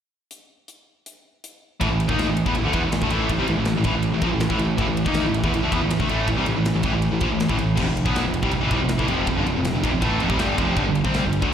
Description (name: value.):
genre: heavy metal.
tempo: 161 BPM.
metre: 4/4.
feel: straight.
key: A minor.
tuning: A4 = 437 Hz.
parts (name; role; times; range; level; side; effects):
tight metal drum kit; drums; 0.3-11.5 s; crash cymbal, hi-hat, kick drum, ride cymbal, snare drum; -27 LUFS; left 1 dB; none.
distorted electric guitar; riff; 1.8-11.5 s; F2 to D#4; -26 LUFS; equal; overdrive, slapback echo.
high-gain distorted guitar; riff; 1.8-11.5 s; F2 to D#4; -27 LUFS; left 11 dB; distortion, slapback echo.
scooped high-gain guitar; riff; 1.8-11.5 s; F2 to D#4; -25 LUFS; right 7 dB; distortion.
fuzz picked electric bass; bass; 1.8-11.5 s; F1 to E2; -25 LUFS; left 1 dB; overdrive.
room: light reverb.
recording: live gig heard through the venue's PA, recital hall reverb.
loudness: -19 LUFS.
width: side -8 dB against mid.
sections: 0.3-1.8 A section; 1.8-11.5 B section.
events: none.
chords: 0.3 N.C.; 1.8 A5; 7.8 F5; 10.8 G5.